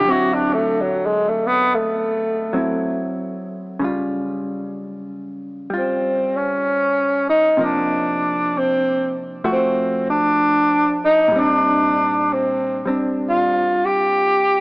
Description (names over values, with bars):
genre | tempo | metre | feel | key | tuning
jazz ballad | 64 BPM | 4/4 | swing 66% on 8ths | Bb major | A4 = 443 Hz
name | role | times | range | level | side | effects
breathy tenor saxophone | melody | 0.0-14.6 s | F#3 to G4 | -17 LUFS | equal | none
hollow-body jazz guitar | accompaniment | 0.0-14.6 s | Bb2 to Gb4 | -24 LUFS | equal | none
room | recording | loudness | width
wet plate reverb, RT60 3.8 s | heard from further back in the room, small speaker sound | -16 LUFS | side -26 dB against mid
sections
0.0-14.6 A section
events
tenor saxophone solo 0.0-14.6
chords
0.0 D9; 3.8 Db; 7.6 C9sus4; 9.4 F; 11.3 Bb69